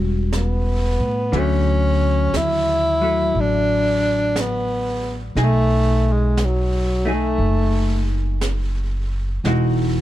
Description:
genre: jazz ballad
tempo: 59 BPM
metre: 4/4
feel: swing 68% on 8ths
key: unclear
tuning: A4 = 439 Hz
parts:
  - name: vintage hollow-body jazz guitar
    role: accompaniment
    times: 0.0-10.0 s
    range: D3 to G#4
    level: -25 LUFS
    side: left 3 dB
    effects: none
  - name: upright bass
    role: bass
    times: 0.0-10.0 s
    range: E1 to A2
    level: -20 LUFS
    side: equal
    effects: none
  - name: jazz brush drum kit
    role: drums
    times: 0.3-10.0 s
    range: brushed snare drum, hi-hat, snare drum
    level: -32 LUFS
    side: right 3 dB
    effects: none
  - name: breathy tenor saxophone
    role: melody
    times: 0.4-8.1 s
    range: F#3 to E4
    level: -20 LUFS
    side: equal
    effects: none
room: little or no reverb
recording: dark, warm production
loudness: -17 LUFS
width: side -14 dB against mid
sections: 0.0-10.0 A section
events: none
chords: 0.0 A13; 1.3 Dmaj7; 5.4 B6; 9.4 Emaj9

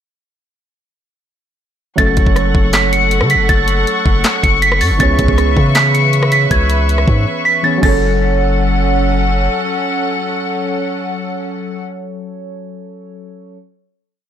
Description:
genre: hip hop, trap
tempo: 159 BPM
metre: 4/4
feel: half-time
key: F# minor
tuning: A4 = 440 Hz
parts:
  - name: celesta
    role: melody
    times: 2.0-9.1 s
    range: G#6 to C#7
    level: -16 LUFS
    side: right 1 dB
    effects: ping-pong delay
  - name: muted felt-like synth keys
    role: accompaniment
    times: 2.0-13.6 s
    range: E3 to C#5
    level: -20 LUFS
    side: right 2 dB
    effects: chorus
  - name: warm studio string section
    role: sustained chords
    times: 2.0-11.8 s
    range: C#4 to C#6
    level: -19 LUFS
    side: left 3 dB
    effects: none
  - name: long sustained 808-style bass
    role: bass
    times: 2.0-9.5 s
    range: F#1 to C#3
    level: -15 LUFS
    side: equal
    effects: none
  - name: trap drum kit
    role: drums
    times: 2.0-7.9 s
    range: crash cymbal, handclaps, hi-hat, kick drum, rim click, snare drum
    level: -16 LUFS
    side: equal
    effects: soft clipping on snare
room: light reverb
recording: blown-out, overdriven recording, overdrive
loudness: -11 LUFS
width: side -9 dB against mid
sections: 2.0-8.0 hook; 8.0-11.0 final hit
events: silent gap 7.3-8.0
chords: 2.0 F#m; 5.0 C#m7; 7.8 F#m

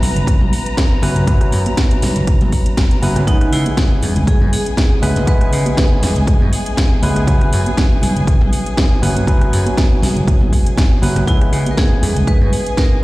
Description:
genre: nu-disco, nu disco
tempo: 120 BPM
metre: 4/4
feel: swing 54% on 16ths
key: unclear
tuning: A4 = 441 Hz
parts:
  - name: barky tine electric piano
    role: accompaniment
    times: 0.0-13.0 s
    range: F#3 to B4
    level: -23 LUFS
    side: equal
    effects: sidechain pumping, tape echo
  - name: muted studio string section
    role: sustained chords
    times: 0.0-13.0 s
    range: G#4 to A#5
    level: -27 LUFS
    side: equal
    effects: sidechain pumping
  - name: slap bass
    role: bass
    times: 0.0-12.5 s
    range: F#1 to C#3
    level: -17 LUFS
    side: equal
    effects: none
  - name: house drum kit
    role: drums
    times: 0.0-12.9 s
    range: hi-hat, rim click, snare drum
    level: -23 LUFS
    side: equal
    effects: none
  - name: congas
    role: percussion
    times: 0.0-12.5 s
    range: none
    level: -26 LUFS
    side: right 3 dB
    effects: none
  - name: electronic kick drum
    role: drums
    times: 0.3-12.9 s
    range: none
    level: -14 LUFS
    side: equal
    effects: none
  - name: vibraphone with hard mallets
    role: melody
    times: 3.3-6.2, 11.3-13.0 s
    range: D#4 to B4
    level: -24 LUFS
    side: equal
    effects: tape echo
room: studio reverb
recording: played on a big sound system in a bare room, large studio reverb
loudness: -12 LUFS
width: side -19 dB against mid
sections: 0.0-13.0 A section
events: none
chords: 0.0 F#7sus4; 3.3 C#m7; 7.3 F#7sus4; 11.3 C#m7

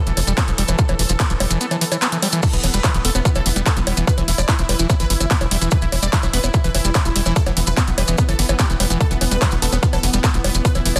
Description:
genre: psychedelic trance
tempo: 146 BPM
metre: 4/4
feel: straight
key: E phrygian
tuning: A4 = 444 Hz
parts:
  - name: bubbling stepped-filter texture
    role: sustained chords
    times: 0.0-11.0 s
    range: E3 to A4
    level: -32 LUFS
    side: equal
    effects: chorus, built-in reverb, sidechain pumping
  - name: overdriven acid bass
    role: riff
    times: 0.1-11.0 s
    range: E3 to F4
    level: -28 LUFS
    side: equal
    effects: distortion, sidechain pumping, tape echo
  - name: tight sequencer bass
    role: bass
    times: 0.1-11.0 s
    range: E1 to G1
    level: -23 LUFS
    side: equal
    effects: none
  - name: techno drum kit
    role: drums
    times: 0.1-11.0 s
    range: bongos, crash cymbal, handclaps, hi-hat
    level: -25 LUFS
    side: equal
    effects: overdrive
  - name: maracas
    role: percussion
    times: 0.1-11.0 s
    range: none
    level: -29 LUFS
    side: equal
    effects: none
  - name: electronic kick drum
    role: drums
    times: 0.4-10.7 s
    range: none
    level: -20 LUFS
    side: equal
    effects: distortion, overdrive
  - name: supersaw stab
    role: melody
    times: 2.4-11.0 s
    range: B3 to D5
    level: -29 LUFS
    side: equal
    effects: phaser, sidechain pumping, tape echo
room: light reverb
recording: dense, heavily limited modern master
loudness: -18 LUFS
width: mono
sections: 0.0-11.0 A section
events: none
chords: 0.0 E5

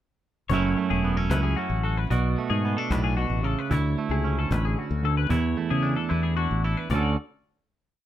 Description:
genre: math rock and midwest emo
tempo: 75 BPM (dotted quarters)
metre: 6/8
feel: straight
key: D lydian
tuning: A4 = 438 Hz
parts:
  - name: twangy electric guitar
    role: accompaniment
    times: 0.5-7.2 s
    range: D2 to A4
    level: -27 LUFS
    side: right 6 dB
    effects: none
  - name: twelve-string electric guitar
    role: arpeggios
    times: 0.5-7.2 s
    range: F#4 to D5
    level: -31 LUFS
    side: left 12 dB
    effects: lush chorus
  - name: modern bright fingered electric bass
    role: bass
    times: 0.5-7.1 s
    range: E1 to C#3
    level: -25 LUFS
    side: left 1 dB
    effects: none
  - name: cajon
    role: drums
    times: 0.5-7.0 s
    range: none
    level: -30 LUFS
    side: left 1 dB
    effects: none
room: light reverb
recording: rough home demo mix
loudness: -23 LUFS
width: side -12 dB against mid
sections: 0.5-6.9 A section; 6.9-8.1 final chord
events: kick and snare drop out 6.1-6.9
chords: 0.5 F#m7; 2.1 Bm7; 3.7 Dmaj9; 6.9 Dmaj7

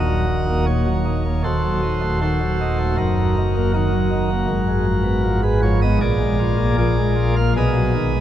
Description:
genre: classical, chorale-style piece for pipe organ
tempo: 78 BPM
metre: 4/4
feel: rubato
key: Eb minor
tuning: A4 = 442 Hz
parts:
  - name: chamber organ, principal chorus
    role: solo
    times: 0.0-8.2 s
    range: Eb1 to F5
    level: -17 LUFS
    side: equal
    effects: none
room: wet cathedral reverb, RT60 5.2 s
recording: dark, warm production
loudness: -17 LUFS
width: side -11 dB against mid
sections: 0.0-8.2 A section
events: none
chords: 0.0 Ebm; 1.5 Ebdim7; 3.0 Ebm/Gb; 4.5 Fdim/Ab; 6.0 Bb7; 7.6 B6

